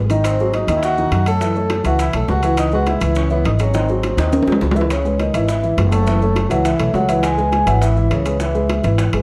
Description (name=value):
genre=Afro-Cuban jazz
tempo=206 BPM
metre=4/4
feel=straight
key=C# minor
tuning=A4 = 441 Hz
part: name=dark baby grand piano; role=accompaniment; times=0.0-9.2 s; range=D#3 to E5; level=-23 LUFS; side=equal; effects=none
part: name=upright bass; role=bass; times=0.0-9.2 s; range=F#1 to F#2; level=-21 LUFS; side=equal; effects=none
part: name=maracas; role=percussion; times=0.1-9.2 s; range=none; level=-43 LUFS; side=equal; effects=none
part: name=timbales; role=percussion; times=0.1-9.2 s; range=none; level=-26 LUFS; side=equal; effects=none
part: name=vibraphone with medium mallets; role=melody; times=0.2-8.8 s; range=B4 to A5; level=-24 LUFS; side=equal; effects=none
part: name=breathy tenor saxophone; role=second line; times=0.2-8.8 s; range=C#3 to A4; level=-28 LUFS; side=equal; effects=none
part: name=bongos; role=percussion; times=0.2-9.2 s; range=none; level=-31 LUFS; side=equal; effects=none
room=moderate large studio reverb, RT60 1.2 s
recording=dark, warm production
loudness=-17 LUFS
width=mono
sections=0.0-4.9 A section; 4.9-9.2 A section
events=drum fill 4.2-4.9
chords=0.2 G#7b9; 1.4 F#m7; 2.6 C#m7; 3.7 G#7; 4.9 C#m9; 6.1 F#m7; 7.2 C#m7